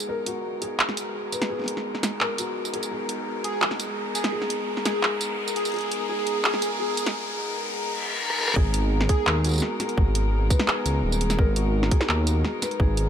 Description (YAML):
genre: half-time drum and bass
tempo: 170 BPM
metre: 4/4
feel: half-time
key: G# minor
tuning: A4 = 440 Hz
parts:
  - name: rich chamber string section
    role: sustained chords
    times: 0.0-13.1 s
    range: G#3 to A#4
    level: -32 LUFS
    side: equal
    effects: sidechain pumping
  - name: felt-muted upright piano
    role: arpeggios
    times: 0.0-13.1 s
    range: F#4 to B4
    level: -31 LUFS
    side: left 2 dB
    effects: low-pass filter, tape echo
  - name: drum and bass drum kit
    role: drums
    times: 0.0-13.0 s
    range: handclaps, hi-hat, rim click, snare drum, tambourine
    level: -27 LUFS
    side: right 1 dB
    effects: small room ambience
  - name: riser and reverse cymbal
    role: sound effects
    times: 0.0-8.6 s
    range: none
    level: -33 LUFS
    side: left 2 dB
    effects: none
  - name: airy dreamy lead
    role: melody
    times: 3.4-9.4 s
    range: G#4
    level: -31 LUFS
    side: equal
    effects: chorus, tape echo
  - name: dark detuned saw bass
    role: bass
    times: 8.6-13.1 s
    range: D#1 to D#2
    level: -23 LUFS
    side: equal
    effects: none
  - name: electronic kick drum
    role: drums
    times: 8.6-12.9 s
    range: none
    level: -21 LUFS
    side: equal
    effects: small room ambience
room: light reverb, digital ambience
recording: high-pass filter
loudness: -22 LUFS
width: side -9 dB against mid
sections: 0.0-8.6 A section; 8.6-13.1 B section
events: build-up 0.0-8.6; riser 0.0-8.6; filter sweep on felt piano 0.0-8.6; reverse cymbal 7.9-8.6; drum fill 8.3; drop 8.6-13.1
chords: 0.0 G#m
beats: | 0.09 0.45 0.80 1.15 | 1.50 1.86 2.21 2.56 | 2.92 3.27 3.62 3.97 | 4.33 4.68 5.03 5.39 | 5.74 6.09 6.45 6.80 | 7.15 7.50 7.86 8.21 | 8.56 8.92 9.27 9.62 | 9.97 10.33 10.68 11.03 | 11.39 11.74 12.09 12.45 | 12.80